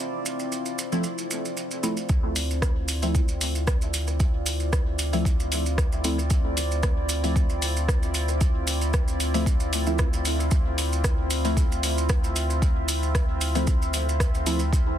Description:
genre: dub techno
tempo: 114 BPM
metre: 4/4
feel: swing 54% on 16ths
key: D minor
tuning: A4 = 440 Hz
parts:
  - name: deep dark ambient pad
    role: sustained chords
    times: 0.0-15.0 s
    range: C4 to E5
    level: -31 LUFS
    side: equal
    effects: chorus, built-in reverb, sidechain pumping
  - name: drifting glass-harmonics texture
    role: texture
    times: 0.0-2.1 s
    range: D4 to D5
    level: -47 LUFS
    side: right 4 dB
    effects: none
  - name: maracas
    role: percussion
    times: 0.3-14.8 s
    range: none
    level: -33 LUFS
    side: right 5 dB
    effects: none
  - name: deep mellow chord stab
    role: stabs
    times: 0.9-14.6 s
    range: F3 to E4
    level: -31 LUFS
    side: equal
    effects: chorus, phaser, sidechain pumping, dub echo
  - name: soft dub sub bass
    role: bass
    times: 2.1-15.0 s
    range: D2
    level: -27 LUFS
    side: equal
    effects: sidechain pumping
  - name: electronic kick drum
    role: drums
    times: 2.1-14.8 s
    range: none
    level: -23 LUFS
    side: equal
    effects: overdrive
  - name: deep house drum kit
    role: drums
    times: 2.4-14.6 s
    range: hi-hat, rim click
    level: -31 LUFS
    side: left 1 dB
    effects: overdrive, dub echo
room: digital ambience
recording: dense, heavily limited modern master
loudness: -22 LUFS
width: side -10 dB against mid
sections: 0.0-2.1 A section; 2.1-15.0 B section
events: none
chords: 0.0 Dm9

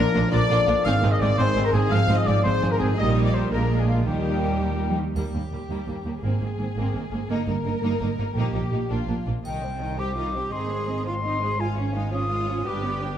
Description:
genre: cinematic, heroic adventure film score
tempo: 112 BPM (dotted quarters)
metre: 6/8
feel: straight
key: Eb major, C minor from 9.4 s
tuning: A4 = 440 Hz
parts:
  - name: warm symphonic violin section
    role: melody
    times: 0.0-13.2 s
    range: F4 to F5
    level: -31 LUFS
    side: left 4 dB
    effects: none
  - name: bright symphonic violin section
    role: second line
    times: 0.0-13.2 s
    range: Bb3 to B4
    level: -36 LUFS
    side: left 3 dB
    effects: none
  - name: concert flute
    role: second line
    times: 0.0-5.0, 9.5-13.2 s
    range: F5 to F6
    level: -31 LUFS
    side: left 2 dB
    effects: none
  - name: rich symphonic viola section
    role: accompaniment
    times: 0.0-13.2 s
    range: Eb3 to D4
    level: -31 LUFS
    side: right 2 dB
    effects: none
  - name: warm French horn section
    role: sustained chords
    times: 0.0-4.9 s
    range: Bb3 to Bb4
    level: -32 LUFS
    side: left 6 dB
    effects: none
  - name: warm trombone section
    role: sustained chords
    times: 0.0-5.0 s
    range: F2 to Ab3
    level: -30 LUFS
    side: right 2 dB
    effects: none
  - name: mellow trumpet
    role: stabs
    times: 0.0-5.0 s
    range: F4 to F5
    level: -28 LUFS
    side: left 1 dB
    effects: none
  - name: clear symphonic double bass section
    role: bass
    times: 0.0-13.2 s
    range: G1 to Eb2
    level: -26 LUFS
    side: right 2 dB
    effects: none
  - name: rich symphonic cello section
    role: bass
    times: 0.0-13.2 s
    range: Eb2 to Ab4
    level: -28 LUFS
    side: right 2 dB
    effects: none
  - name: triangle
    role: percussion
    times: 5.2-5.8, 9.4-10.1 s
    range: none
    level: -50 LUFS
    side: left 2 dB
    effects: none
room: wet scoring stage reverb, RT60 1.7 s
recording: dark, warm production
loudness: -21 LUFS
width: side -10 dB against mid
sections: 0.0-5.2 A section; 5.2-9.4 B section; 9.4-13.2 C section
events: none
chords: 0.0 Bb; 0.9 Ab; 3.0 Eb/Bb; 3.5 Bb7; 4.1 Eb; 6.2 Abadd9; 7.3 Eb/G; 8.4 Eb/Bb; 9.4 Cm; 10.5 Ab; 11.6 Db/Ab; 12.7 G

